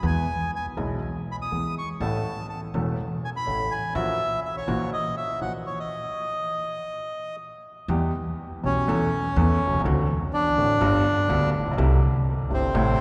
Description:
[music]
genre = tango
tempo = 122 BPM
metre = 4/4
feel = rubato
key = E minor from 7.9 s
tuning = A4 = 440 Hz
[part]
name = bandoneon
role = melody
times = 0.0-13.0 s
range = C4 to D#6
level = -30 LUFS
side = equal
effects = none
[part]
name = warm baby grand piano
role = accompaniment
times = 0.0-13.0 s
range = E1 to A4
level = -29 LUFS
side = equal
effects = none
[part]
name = upright bass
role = bass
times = 0.0-13.0 s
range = E1 to E2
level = -30 LUFS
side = equal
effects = none
[sound]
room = wet cathedral reverb, RT60 4.5 s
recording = recorded in a church or concert hall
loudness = -25 LUFS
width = mono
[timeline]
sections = 0.0-7.9 A section; 7.9-13.0 B section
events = stop 5.9-7.9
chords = 0.0 E; 2.0 A; 4.0 F#7/A#; 5.9 N.C.; 7.9 Em; 8.9 A/E; 9.8 D7; 10.8 G7; 11.8 C6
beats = | 0.03 0.53 1.02 1.52 | 2.01 2.50 2.99 3.48 | 3.96 4.44 4.92 5.41 | 5.91 6.40 6.89 7.39 | 7.89 8.38 8.88 9.36 | 9.85 10.33 10.81 11.30 | 11.78 12.26 12.75

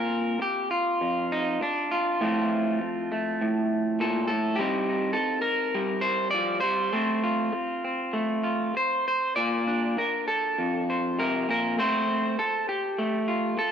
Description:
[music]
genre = folk, solo fingerstyle acoustic guitar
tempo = 100 BPM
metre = 4/4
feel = rubato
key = F mixolydian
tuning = A4 = 439 Hz
[part]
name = electric guitar through a small old amp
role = solo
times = 0.0-13.7 s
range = F2 to D5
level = -24 LUFS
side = equal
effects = none
[sound]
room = moderate plate reverb, RT60 3.0 s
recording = none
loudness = -24 LUFS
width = side -8 dB against mid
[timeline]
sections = 0.0-13.7 A section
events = none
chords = 0.0 Bbadd9; 2.2 F/A; 4.6 Cm/G; 6.9 F/A; 9.4 Bbadd9; 11.8 F/A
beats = 0.40 1.01 1.62 | 2.22 2.82 3.41 4.00 | 4.59 5.17 5.76 6.34 | 6.94 7.54 8.14 8.75 | 9.37 9.98 10.58 11.18 | 11.78 12.38 12.98 13.57

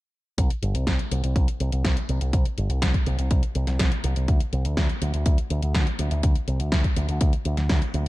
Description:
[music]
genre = italo disco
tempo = 123 BPM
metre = 4/4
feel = straight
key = unclear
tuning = A4 = 440 Hz
[part]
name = picked electric bass with an envelope filter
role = bass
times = 0.4-8.0 s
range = G1 to D2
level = -24 LUFS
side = equal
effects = none
[part]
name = electronic kick drum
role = drums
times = 0.4-7.8 s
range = none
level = -22 LUFS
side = equal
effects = overdrive
[part]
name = house drum kit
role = drums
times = 0.4-8.0 s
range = hi-hat, snare drum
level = -30 LUFS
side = equal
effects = none
[sound]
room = little or no reverb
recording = dark, warm production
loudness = -21 LUFS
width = side -18 dB against mid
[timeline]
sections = 0.4-8.1 A section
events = none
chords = none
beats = | 0.38 0.87 1.36 1.84 | 2.33 2.82 3.31 3.80 | 4.28 4.77 5.26 5.75 | 6.24 6.72 7.21 7.70

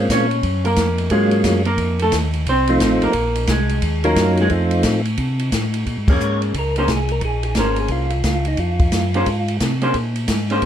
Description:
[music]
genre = soul jazz organ trio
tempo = 177 BPM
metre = 4/4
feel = swing 64% on 8ths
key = Bb minor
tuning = A4 = 441 Hz
[part]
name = percussive tonewheel organ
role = melody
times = 0.0-9.6 s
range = F3 to Db5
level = -20 LUFS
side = equal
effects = slow rotary speaker
[part]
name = mellow tonewheel organ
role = bass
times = 0.0-10.7 s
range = Ab1 to C3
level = -21 LUFS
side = equal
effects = chorus vibrato, slow rotary speaker
[part]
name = vintage hollow-body jazz guitar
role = accompaniment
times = 0.1-10.6 s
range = Ab3 to Db5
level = -20 LUFS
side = equal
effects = none
[part]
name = open jazz drum kit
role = drums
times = 0.1-10.7 s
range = crash cymbal, hi-hat, kick drum, ride cymbal, snare drum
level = -22 LUFS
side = equal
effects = none
[sound]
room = light reverb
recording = dark, warm production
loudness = -16 LUFS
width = side -10 dB against mid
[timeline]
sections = 0.0-5.9 A section; 5.9-10.7 B section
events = hollow-body jazz guitar solo 0.0-5.9; band accent 6.0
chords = 0.4 Gbmaj7; 1.8 F7; 3.1 Bbsus2; 3.8 Ebm9; 4.5 F7; 5.9 Bbm9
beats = 0.09 | 0.43 0.77 1.11 1.45 | 1.79 2.13 2.47 2.81 | 3.15 3.48 3.83 4.16 | 4.50 4.84 5.18 5.52 | 5.86 6.20 6.54 6.88 | 7.22 7.56 7.90 8.24 | 8.58 8.92 9.26 9.60 | 9.94 10.28 10.62

